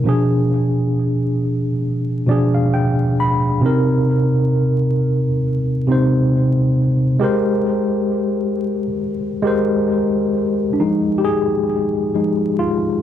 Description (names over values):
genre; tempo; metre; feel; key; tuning
hip hop; 67 BPM; 4/4; swing 56% on 16ths; unclear; A4 = 438 Hz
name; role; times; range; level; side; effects
tine electric piano; solo; 0.0-13.0 s; B2 to B5; -15 LUFS; equal; overdrive, fast stereo tremolo, analog delay
room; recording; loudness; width
moderate small room reverb, RT60 0.5 s; vinyl crackle; -15 LUFS; side -10 dB against mid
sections
0.0-10.8 A section; 10.8-13.0 B section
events
tine electric piano fill 1.9-3.6; tine electric piano solo 10.8-13.0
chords
0.1 Bdim7; 3.6 Cm7; 7.2 Abmaj9; 10.8 Fm7